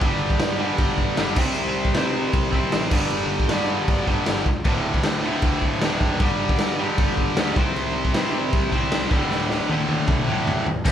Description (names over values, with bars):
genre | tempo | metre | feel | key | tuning
punk rock | 155 BPM | 4/4 | straight | unclear | A4 = 439 Hz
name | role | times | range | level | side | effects
tight distorted guitar | riff | 0.0-10.9 s | D2 to C4 | -23 LUFS | equal | distortion
fuzz picked electric bass | bass | 0.0-10.9 s | D1 to C3 | -30 LUFS | equal | overdrive
raw garage drum kit | drums | 0.0-10.9 s | crash cymbal, kick drum, snare drum, toms | -22 LUFS | equal | none
room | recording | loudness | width
light reverb | band playing live in one room | -19 LUFS | side -10 dB against mid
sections
0.0-10.9 A section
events
drum fill 9.3-10.9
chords
0.0 G5; 1.4 C5; 2.9 G5; 4.7 D5; 6.2 G5; 7.6 C5; 9.1 D5